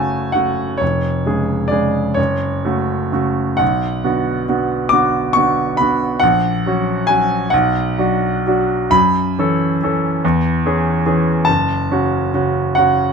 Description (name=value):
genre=classical, romantic nocturne for solo piano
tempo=41-49 BPM (dotted quarters)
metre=6/8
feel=rubato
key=F# minor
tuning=A4 = 440 Hz
part: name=clear grand piano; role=solo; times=0.0-13.1 s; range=E#1 to D6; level=-14 LUFS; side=equal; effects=none
room=light reverb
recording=minimal, uncompressed stereo recording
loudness=-14 LUFS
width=side -5 dB against mid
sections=0.0-13.1 A section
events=none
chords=0.0 F#m; 0.8 C#/E#; 2.2 F#m; 3.6 Bm; 6.2 F#/A#; 7.5 Bm; 8.9 F#m7; 10.2 C#m/E; 11.5 F#m